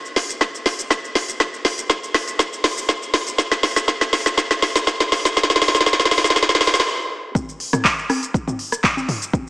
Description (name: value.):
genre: house.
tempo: 121 BPM.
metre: 4/4.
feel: straight.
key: none.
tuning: none.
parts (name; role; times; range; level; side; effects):
deep house drum kit; drums; 0.1-9.5 s; handclaps, hi-hat, rim click, shaker, snare drum; -17 LUFS; equal; studio reverb.
electronic kick drum; drums; 0.4-9.4 s; none; -23 LUFS; equal; high-pass filter on kick, studio reverb.
electronic congas and toms; percussion; 7.4-9.4 s; none; -23 LUFS; left 1 dB; sidechain pumping on perc, studio reverb, sidechain pumping on toms.
room: wet lush hall reverb, RT60 2.1 s.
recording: high-pass filter, small speaker sound.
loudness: -16 LUFS.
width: side -22 dB against mid.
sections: 0.0-7.4 A section; 7.4-9.5 B section.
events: build-up 0.0-7.4; drum fill 0.0-6.9; stop 6.9-7.4; drop 7.4-9.5.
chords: none.